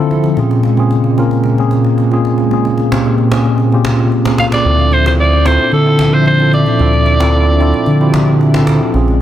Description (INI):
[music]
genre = amapiano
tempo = 112 BPM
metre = 4/4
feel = straight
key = unclear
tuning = A4 = 440 Hz
[part]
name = mellow tine electric piano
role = accompaniment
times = 0.0-9.2 s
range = Bb2 to C5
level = -13 LUFS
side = equal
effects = medium stereo tremolo
[part]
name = hollow soft pad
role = sustained chords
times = 0.0-9.2 s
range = Bb2 to E5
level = -18 LUFS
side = equal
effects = ensemble chorus
[part]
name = cajon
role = drums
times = 0.1-9.1 s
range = none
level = -24 LUFS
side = equal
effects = none
[part]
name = growling alto saxophone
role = melody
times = 4.4-8.4 s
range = A4 to F5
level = -16 LUFS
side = right 1 dB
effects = tape echo
[part]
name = sub bass with octave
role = bass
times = 4.7-9.2 s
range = Bb1 to D3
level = -11 LUFS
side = equal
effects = none
[sound]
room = small room ambience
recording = dense, heavily limited modern master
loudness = -9 LUFS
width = side -11 dB against mid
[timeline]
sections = 0.0-9.2 A section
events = none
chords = 0.4 Bbm9; 4.7 Dm9